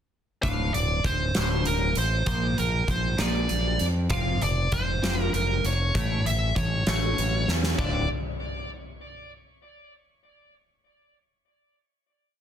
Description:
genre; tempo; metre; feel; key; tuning
quiet-loud alternative rock; 65 BPM (dotted quarters); 6/8; straight; D minor; A4 = 440 Hz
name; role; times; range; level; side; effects
dark smooth lead guitar; melody; 0.4-8.1 s; Bb4 to F5; -29 LUFS; right 1 dB; overdrive, tape echo
twelve-string electric guitar; arpeggios; 0.4-8.0 s; D2 to F4; -32 LUFS; left 1 dB; phaser
growling fingered electric bass; bass; 0.4-8.1 s; D1 to F2; -27 LUFS; equal; overdrive
huge arena drum kit; drums; 0.4-7.9 s; china cymbal, hi-hat, kick drum, snare drum, toms; -29 LUFS; equal; soft clipping on kick
room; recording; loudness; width
small room ambience; dense, heavily limited modern master; -23 LUFS; side -9 dB against mid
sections
0.4-7.8 verse; 7.8-9.6 final chord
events
drum fill 7.5-7.8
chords
0.4 D5; 2.3 Bb; 4.1 F5; 5.9 A; 7.8 Dm7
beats
| 0.44 1.35 | 2.27 3.19 | 4.11 5.03 | 5.95 6.86 | 7.78

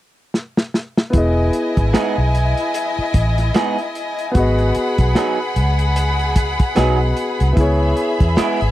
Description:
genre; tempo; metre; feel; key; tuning
lush 1970s-style soul; 75 BPM; 4/4; swing 58% on 16ths; E major; A4 = 444 Hz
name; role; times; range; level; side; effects
warm soul drum kit; drums; 0.3-8.7 s; hi-hat, kick drum, snare drum; -17 LUFS; equal; none
warm studio violin section; second line; 1.1-8.7 s; E4 to B5; -22 LUFS; left 1 dB; none
warm grand piano; accompaniment; 1.1-8.7 s; B3 to D#5; -22 LUFS; left 1 dB; none
vintage muted fingered electric bass; bass; 1.1-8.7 s; E1 to E2; -17 LUFS; equal; none
electric guitar through a small old amp; riff; 1.9-8.6 s; F#3 to G#4; -19 LUFS; right 4 dB; none
room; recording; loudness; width
little or no reverb; dry, close 1970s-style studio recording; -15 LUFS; side -14 dB against mid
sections
0.0-1.1 A section; 1.1-8.7 B section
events
drum fill 0.3-1.1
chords
0.0 N.C.; 1.1 Emaj7; 4.4 G#m7; 7.6 C#m7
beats
0.34 | 1.14 1.94 2.75 3.55 | 4.35 5.16 5.96 6.76 | 7.57 8.37

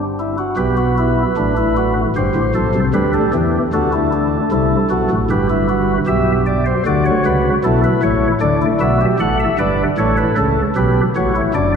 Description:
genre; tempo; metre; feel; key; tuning
classical, baroque-style 3-part fugue for pipe organ; 77 BPM; 4/4; straight; G major; A4 = 441 Hz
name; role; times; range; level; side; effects
chamber organ, flutes; solo; 0.0-11.8 s; F#1 to F#5; -14 LUFS; equal; none
room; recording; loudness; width
wet church reverb, RT60 3.9 s; none; -14 LUFS; side -6 dB against mid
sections
0.6-11.8 A section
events
none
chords
0.0 N.C.; 0.6 G/B; 2.2 Am7/G; 3.7 D; 5.3 G; 6.9 D; 8.4 Em7; 10.0 A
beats
| 0.58 1.38 2.16 2.95 | 3.74 4.52 5.30 6.09 | 6.87 7.64 8.42 9.20 | 9.99 10.77 11.56

